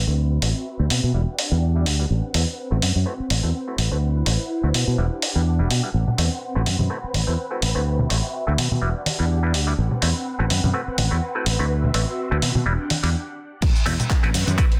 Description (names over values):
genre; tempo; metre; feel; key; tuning
filtered disco house; 125 BPM; 4/4; swing 56% on 16ths; A dorian; A4 = 440 Hz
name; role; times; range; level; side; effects
phased string machine; sustained chords; 0.0-14.8 s; C4 to F#5; -33 LUFS; equal; ensemble chorus, phaser, sidechain pumping, low-pass filter
fingered electric bass; bass; 0.0-14.7 s; E1 to B2; -23 LUFS; equal; sidechain pumping, low-pass filter
bright clav; accompaniment; 0.1-14.7 s; G3 to B4; -33 LUFS; equal; phaser, sidechain pumping, low-pass filter
dusty soul sampler-style drum kit; drums; 0.4-14.8 s; crash cymbal, handclaps, hi-hat, shaker; -28 LUFS; equal; sidechain pumping on hats, sidechain pumping on perc, sidechain pumping on cymbals
tambourine and congas; percussion; 5.9-14.8 s; none; -28 LUFS; equal; sidechain pumping on perc, low-pass filter on perc
electronic kick drum; drums; 13.6-14.7 s; none; -21 LUFS; equal; none
room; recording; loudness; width
light reverb; dense, heavily limited modern master; -22 LUFS; mono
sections
0.0-13.6 A section; 13.6-14.8 B section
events
filter sweep 0.0-13.6; stop 13.1-13.6; drop 13.6-14.8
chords
0.0 Am69; 1.1 Em9; 2.1 Am69; 5.0 Em9; 5.9 Am69; 8.8 Em9; 9.8 Am69; 12.7 Em9; 13.6 Am69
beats
| 0.18 0.66 1.14 1.62 | 2.10 2.58 3.06 3.54 | 4.02 4.50 4.98 5.46 | 5.94 6.42 6.90 7.38 | 7.86 8.34 8.82 9.30 | 9.78 10.26 10.74 11.22 | 11.70 12.18 12.66 13.14 | 13.62 14.10 14.58